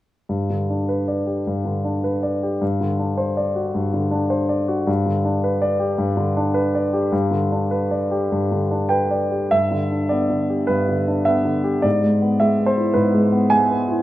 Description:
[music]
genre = classical, romantic character piece for solo piano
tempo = 105 BPM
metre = 4/4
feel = rubato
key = G major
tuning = A4 = 443 Hz
[part]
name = warm concert grand piano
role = solo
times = 0.3-14.0 s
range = G2 to G#5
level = -18 LUFS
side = equal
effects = none
[sound]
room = moderate recital hall reverb, RT60 1.6 s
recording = none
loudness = -18 LUFS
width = side -15 dB against mid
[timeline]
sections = 0.3-9.5 A section; 9.5-14.0 B section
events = none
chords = 0.3 G; 2.6 D7/G; 4.9 G; 11.8 E7/G#

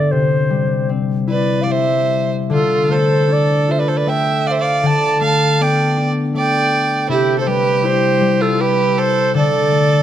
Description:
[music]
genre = celtic folk, Celtic slow air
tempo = 79 BPM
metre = 3/4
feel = rubato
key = unclear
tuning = A4 = 439 Hz
[part]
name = bright reedy baroque flute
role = melody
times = 0.0-10.0 s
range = G4 to A5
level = -18 LUFS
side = right 3 dB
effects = none
[part]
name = concert harp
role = accompaniment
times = 0.0-10.0 s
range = G2 to F4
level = -17 LUFS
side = left 3 dB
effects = none
[part]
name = clear fiddle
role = second line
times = 1.3-10.0 s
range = E4 to F5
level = -21 LUFS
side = right 5 dB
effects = none
[sound]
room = moderate concert hall reverb, RT60 2.3 s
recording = close, detailed microphones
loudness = -14 LUFS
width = side -10 dB against mid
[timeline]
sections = 0.0-10.0 A section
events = none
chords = 0.1 C; 2.5 Dm; 4.8 Gadd9/D; 7.1 C; 9.3 D5

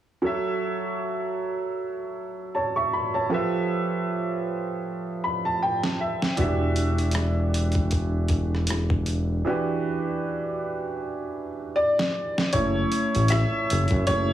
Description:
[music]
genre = R&B, neo-soul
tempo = 78 BPM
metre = 4/4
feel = swing 54% on 16ths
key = unclear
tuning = A4 = 444 Hz
[part]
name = clear upright piano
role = accompaniment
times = 0.2-14.3 s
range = E3 to C#6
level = -25 LUFS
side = right 1 dB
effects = plate reverb
[part]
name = boom bap sampler-style drum kit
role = drums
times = 5.8-14.3 s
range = hi-hat, kick drum, rim click, snare drum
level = -27 LUFS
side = equal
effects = overdrive
[part]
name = smooth synth bass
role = bass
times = 6.4-14.3 s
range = E1 to F#2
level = -23 LUFS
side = equal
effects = none
[sound]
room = light reverb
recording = heavily compressed radio sound, small room ambience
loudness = -23 LUFS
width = side -12 dB against mid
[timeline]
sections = 0.2-12.5 A section; 12.5-14.3 B section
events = upright piano fill 4.8-6.4; drum fill 5.6-6.4, 11.0-12.5; break 9.5-12.5; upright piano solo 12.5-14.3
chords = 0.2 F#m7; 3.3 Fmaj9#11; 6.4 Em9; 12.5 F#m7

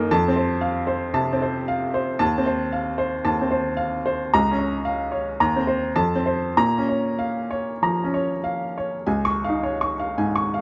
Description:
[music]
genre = classical, romantic character piece for solo piano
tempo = 94-118 BPM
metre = 4/4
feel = rubato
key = Bb minor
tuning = A4 = 440 Hz
[part]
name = bright upright piano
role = solo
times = 0.0-10.6 s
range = Db2 to Db6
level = -23 LUFS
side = equal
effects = none
[sound]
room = moderate recital hall reverb, RT60 1.5 s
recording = close, detailed microphones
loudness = -23 LUFS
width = mono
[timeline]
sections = 0.0-9.1 A section; 9.1-10.6 B section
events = none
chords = 0.1 F; 2.2 F7/Eb; 4.3 Bbm/Db; 5.4 Cm7/Eb; 5.9 F; 6.6 Bbm; 9.1 Db

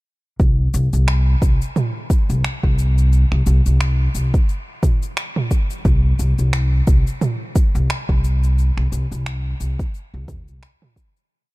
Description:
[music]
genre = organic downtempo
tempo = 88 BPM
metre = 4/4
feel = swing 57% on 16ths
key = C major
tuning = A4 = 437 Hz
[part]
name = upright bass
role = bass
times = 0.4-10.6 s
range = C2 to E2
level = -16 LUFS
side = equal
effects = none
[part]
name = deep house drum kit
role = drums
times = 0.4-11.3 s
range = cabasa, finger snaps, toms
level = -27 LUFS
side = right 2 dB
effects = overdrive
[part]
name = electronic kick drum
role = drums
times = 0.4-11.1 s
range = none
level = -17 LUFS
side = equal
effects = overdrive
[sound]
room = digital ambience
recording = dark, warm production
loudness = -16 LUFS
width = side -21 dB against mid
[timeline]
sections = 0.4-11.3 groove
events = fade-out 7.7-11.3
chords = none

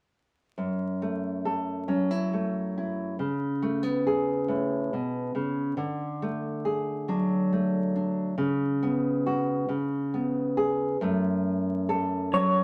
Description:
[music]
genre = folk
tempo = 46 BPM (dotted quarters)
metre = 6/8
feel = straight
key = F# minor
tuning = A4 = 445 Hz
[part]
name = nylon-string guitar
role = accompaniment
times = 0.6-12.6 s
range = F#2 to A4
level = -28 LUFS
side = equal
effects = none
[part]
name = electric guitar through a small old amp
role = melody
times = 12.3-12.6 s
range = C#5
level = -25 LUFS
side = equal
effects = tremolo
[sound]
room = wet studio reverb, RT60 0.7 s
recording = vinyl crackle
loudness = -28 LUFS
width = mono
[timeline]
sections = 0.6-11.0 A section; 11.0-12.6 B section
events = none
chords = 0.6 F#m7; 3.2 C#5; 5.8 D; 8.4 C#7sus4; 9.7 C#5; 11.0 F#m

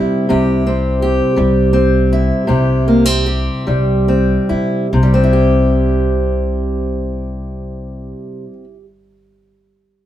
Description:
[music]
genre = blues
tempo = 46-57 BPM (dotted quarters)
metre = 12/8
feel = straight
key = C major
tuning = A4 = 439 Hz
[part]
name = fingerpicked acoustic archtop guitar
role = accompaniment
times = 0.0-8.8 s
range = C3 to G4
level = -14 LUFS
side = equal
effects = none
[part]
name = upright bass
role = bass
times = 0.0-8.1 s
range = C2 to C3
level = -17 LUFS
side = equal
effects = none
[sound]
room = moderate studio reverb, RT60 0.6 s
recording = band playing live in one room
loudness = -12 LUFS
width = side -12 dB against mid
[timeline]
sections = 0.0-4.9 A section; 4.9-10.1 B section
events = slowing down 0.0-4.9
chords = 0.0 C

